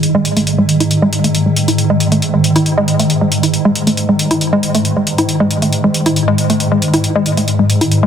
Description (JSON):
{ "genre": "driving peak-time techno", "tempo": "137 BPM", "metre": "4/4", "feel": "straight", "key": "unclear", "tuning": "A4 = 436 Hz", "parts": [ { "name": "swarming drone", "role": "drone", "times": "0.0-8.1 s", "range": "G#2 to D#3", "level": "-14 LUFS", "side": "equal", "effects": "built-in reverb" }, { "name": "electronic hi-hat", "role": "drums", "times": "0.0-8.0 s", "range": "none", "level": "-19 LUFS", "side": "left 1 dB", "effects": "none" }, { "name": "woody wave-folded pluck", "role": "riff", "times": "0.1-8.1 s", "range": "G#3 to E4", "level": "-15 LUFS", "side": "equal", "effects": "chorus, tube saturation, vintage 12-bit sampler grit, tape echo" } ], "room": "moderate lush hall reverb, RT60 2.3 s", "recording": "dense, heavily limited modern master", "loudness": "-11 LUFS", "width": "side -8 dB against mid", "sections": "0.0-8.1 A section", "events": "filter sweep on synth arpeggio sound 0.0-8.1", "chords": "0.0 G#5", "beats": "| 0.03 0.47 0.91 1.35 | 1.78 2.22 2.66 3.10 | 3.54 3.97 4.41 4.85 | 5.29 5.72 6.16 6.60 | 7.04 7.48 7.92" }